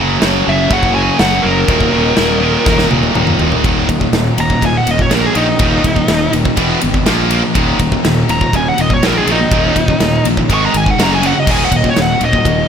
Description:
heavy metal; 122 BPM; 4/4; straight; Eb phrygian; A4 = 441 Hz
dark studio string section; sustained chords; 0.0-3.6, 11.5-12.7 s; Bb3 to Eb5; -27 LUFS; left 2 dB
distorted electric guitar; riff; 0.0-12.7 s; Eb2 to Gb4; -21 LUFS; left 1 dB; distortion
high-gain distorted guitar; riff; 0.0-12.7 s; Eb2 to Bb3; -19 LUFS; left 11 dB; distortion
high-gain distorted guitar; riff; 0.0-12.7 s; Eb2 to Bb3; -18 LUFS; right 11 dB; distortion
fuzz fingered electric bass; bass; 0.0-12.6 s; Eb1 to Bb1; -18 LUFS; equal; overdrive
big rock drum kit; drums; 0.2-12.6 s; china cymbal, crash cymbal, kick drum, ride cymbal, snare drum, toms; -17 LUFS; equal
high-gain lead guitar; melody; 0.5-12.7 s; Eb4 to Db6; -16 LUFS; equal; distortion
studio reverb; -10 LUFS; side -8 dB against mid
0.0-3.6 A section; 3.6-12.7 B section
drum fill 2.7-3.6; lead electric guitar solo 3.6-12.7
0.0 Gb; 1.7 Ebm; 6.6 E5; 7.1 Bb5; 7.6 Ebm; 10.5 Ab5; 11.0 Gb5; 11.5 Ebm

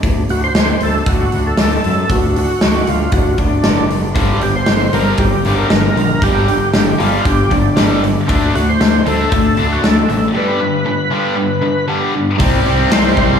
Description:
classic rock; 116 BPM; 4/4; straight; A4 = 440 Hz
fuzz fingered electric bass; bass; 0.0-13.3 s; F#1 to F#2; -19 LUFS; equal; overdrive
big rock drum kit; drums; 0.0-13.3 s; hi-hat, kick drum, snare drum; -16 LUFS; equal
overdriven tonewheel organ; melody; 0.3-13.4 s; D4 to C5; -18 LUFS; right 1 dB; slow rotary speaker, chorus vibrato, slapback echo
tight distorted guitar; riff; 4.1-13.4 s; G2 to D4; -16 LUFS; left 1 dB; distortion
picked twelve-string acoustic guitar; accompaniment; 12.4-13.4 s; C3 to G4; -24 LUFS; left 2 dB
fuzz guitar; riff; 12.4-13.4 s; C3 to C4; -18 LUFS; left 1 dB; distortion, slapback echo
moderate concert hall reverb, RT60 2.2 s; big arena sound; -12 LUFS; side -7 dB against mid
0.0-12.4 A section
break 10.3-12.4
0.0 D; 4.2 Gm; 8.3 D5; 10.3 G; 12.4 Cm

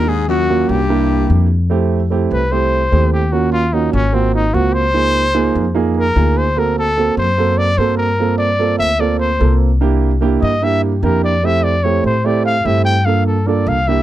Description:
jazz; 148 BPM; 4/4; straight; F major; A4 = 440 Hz
breathy trumpet; melody; 0.0-14.0 s; C4 to G5; -17 LUFS; left 1 dB
breathy baritone saxophone; second line; 0.0-1.5 s; Gb2 to Ab2; -20 LUFS; left 12 dB
dark concert grand piano; accompaniment; 0.0-14.0 s; A3 to A4; -18 LUFS; right 6 dB
upright bass; bass; 0.0-14.0 s; Ab1 to A2; -17 LUFS; left 1 dB
little or no reverb; dry, close 1970s-style studio recording; -13 LUFS; side -13 dB against mid
0.0-1.7 A section; 1.7-14.0 B section
trumpet solo 1.7-14.0
0.1 Ebm7; 0.9 C7; 1.7 Fmaj9; 3.3 Ebm7; 4.1 Ab13; 5.0 Db69; 6.6 D7b13; 8.2 Gm11; 9.8 C7; 11.4 Fmaj9; 13.1 Gm7

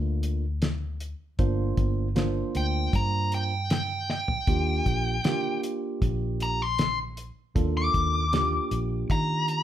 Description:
straight-eighth soul blues; 78 BPM; 4/4; straight; G minor; A4 = 440 Hz
tine electric piano; accompaniment; 0.0-9.6 s; A3 to C5; -32 LUFS; right 4 dB
vintage muted fingered electric bass; bass; 0.0-9.6 s; G1 to Eb3; -28 LUFS; equal
cloth-damped thuddy drum kit; drums; 0.2-9.6 s; hi-hat, kick drum, snare drum, toms; -28 LUFS; equal
smooth overdriven lead guitar; melody; 2.6-9.6 s; G5 to D6; -28 LUFS; left 1 dB
light reverb; band playing live in one room; -24 LUFS; side -11 dB against mid
0.0-9.6 A section
lead electric guitar solo 0.0-9.6; drum fill 4.1-4.5
0.0 Gm7; 4.5 Ebmaj7

